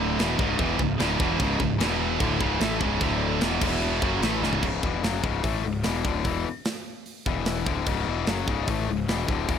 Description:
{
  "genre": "heavy metal",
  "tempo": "148 BPM",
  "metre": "4/4",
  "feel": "straight",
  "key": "unclear",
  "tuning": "A4 = 440 Hz",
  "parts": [
    { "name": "scooped high-gain guitar", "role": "riff", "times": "0.0-4.6 s", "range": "C#2 to A3", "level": "-26 LUFS", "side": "right 12 dB", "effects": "distortion" },
    { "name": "tight distorted guitar", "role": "riff", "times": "0.0-9.6 s", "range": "C#2 to A3", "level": "-27 LUFS", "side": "left 10 dB", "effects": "distortion" },
    { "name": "fuzz picked electric bass", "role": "bass", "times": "0.0-9.6 s", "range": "C#1 to A1", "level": "-30 LUFS", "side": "equal", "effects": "overdrive" },
    { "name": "tight metal drum kit", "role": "drums", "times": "0.2-9.6 s", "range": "crash cymbal, hi-hat, kick drum, snare drum, toms", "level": "-29 LUFS", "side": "equal", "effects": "none" }
  ],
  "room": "little or no reverb",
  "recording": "none",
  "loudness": "-23 LUFS",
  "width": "side -8 dB against mid",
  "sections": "0.0-4.6 A section; 4.6-9.6 B section",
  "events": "drum fill 4.4",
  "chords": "0.2 C#m; 1.8 E5; 2.2 C#m; 3.0 D5; 3.4 E5; 4.0 C#m; 7.3 E5; 7.7 C#m",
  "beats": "0.19 0.59 1.00 | 1.40 1.80 2.21 2.61 | 3.02 3.42 3.82 4.23 | 4.63 5.04 5.44 5.85 | 6.25 6.66 7.06 7.47 | 7.87 8.28 8.68 9.09 | 9.49"
}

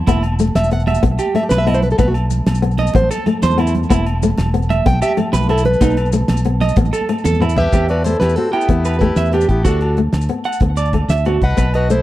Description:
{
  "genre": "highlife guitar band",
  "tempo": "125 BPM (dotted quarters)",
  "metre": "12/8",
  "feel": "straight",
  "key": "E harmonic minor, E minor from 7.7 s",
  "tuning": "A4 = 440 Hz",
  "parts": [
    { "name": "flamenco guitar", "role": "accompaniment", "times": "0.1-12.0 s", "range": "A3 to B3", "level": "-21 LUFS", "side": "left 5 dB", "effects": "none" },
    { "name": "electric guitar at the edge of break-up", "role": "arpeggios", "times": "0.1-11.7 s", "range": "D#4 to G5", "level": "-22 LUFS", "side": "right 5 dB", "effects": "tape echo" },
    { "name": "fingered electric bass", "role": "bass", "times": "0.1-12.0 s", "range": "E1 to E2", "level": "-17 LUFS", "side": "equal", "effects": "none" },
    { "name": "damped 70s drum kit", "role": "drums", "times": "0.1-12.0 s", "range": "hi-hat, kick drum, snare drum, toms", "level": "-18 LUFS", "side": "equal", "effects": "none" },
    { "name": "agogo bells", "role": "percussion", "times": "0.1-11.9 s", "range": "none", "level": "-29 LUFS", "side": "right 1 dB", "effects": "none" },
    { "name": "congas", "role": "percussion", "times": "0.1-7.7 s", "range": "none", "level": "-23 LUFS", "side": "right 3 dB", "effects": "none" },
    { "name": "maracas", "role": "percussion", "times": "0.1-12.0 s", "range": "none", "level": "-35 LUFS", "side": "left 11 dB", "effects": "none" },
    { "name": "fingerpicked plugged-in acoustic archtop guitar", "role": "melody", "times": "0.6-12.0 s", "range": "E4 to G5", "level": "-19 LUFS", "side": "equal", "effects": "none" },
    { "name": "bright trumpet", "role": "second line", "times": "7.6-12.0 s", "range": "B3 to B4", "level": "-28 LUFS", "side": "left 5 dB", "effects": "none" }
  ],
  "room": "small room reverb",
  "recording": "dry, close 1970s-style studio recording",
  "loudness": "-13 LUFS",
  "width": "side -15 dB against mid",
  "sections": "0.0-7.7 A section; 7.7-12.0 B section",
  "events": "steel-string acoustic guitar solo 0.0-7.7; drum fill 7.3-7.7",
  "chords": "0.1 E5; 2.0 B; 2.9 Am; 3.9 E5; 5.8 B; 6.8 A5; 7.7 Em; 9.7 D",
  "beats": "| 0.08 0.56 1.04 1.51 | 1.99 2.47 2.95 3.43 | 3.90 4.38 4.86 5.34 | 5.82 6.29 6.77 7.25 | 7.73 8.21 8.69 9.18 | 9.66 10.14 10.62 11.10 | 11.58"
}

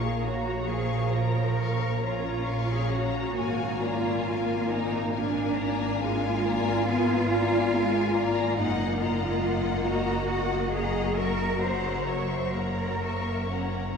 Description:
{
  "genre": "classical, slow romantic movement for string orchestra",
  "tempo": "42-48 BPM (dotted quarters)",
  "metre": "12/8",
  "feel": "rubato",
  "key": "Bb minor",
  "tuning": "A4 = 439 Hz",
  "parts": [
    { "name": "rich studio violin section", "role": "melody", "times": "0.0-14.0 s", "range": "Gb5 to Db6", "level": "-36 LUFS", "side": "left 3 dB", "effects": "none" },
    { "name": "rich studio violin section", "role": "second line", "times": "0.0-14.0 s", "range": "Bb4 to Ab5", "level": "-34 LUFS", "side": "left 4 dB", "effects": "none" },
    { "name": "rich studio viola section", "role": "accompaniment", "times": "0.0-14.0 s", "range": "F3 to Db4", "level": "-32 LUFS", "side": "left 2 dB", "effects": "none" },
    { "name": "rich studio cello section", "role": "bass", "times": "0.0-14.0 s", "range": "Db4 to Db5", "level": "-29 LUFS", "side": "right 1 dB", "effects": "none" },
    { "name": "rich studio double bass section", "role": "bass", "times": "0.0-13.9 s", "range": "Gb1 to Bb1", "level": "-30 LUFS", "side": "right 1 dB", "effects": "none" }
  ],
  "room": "wet cathedral reverb, RT60 6.2 s",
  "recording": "heard from further back in the room",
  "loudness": "-24 LUFS",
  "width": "side -6 dB against mid",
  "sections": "0.0-14.0 A section",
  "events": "none",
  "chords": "0.0 Bbm; 3.4 Bb7/Ab; 8.6 Ebm/Gb; 11.2 Gb7",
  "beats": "0.68 2.03 | 3.37 4.69 6.01 7.31 | 8.57 9.86 11.16 12.54"
}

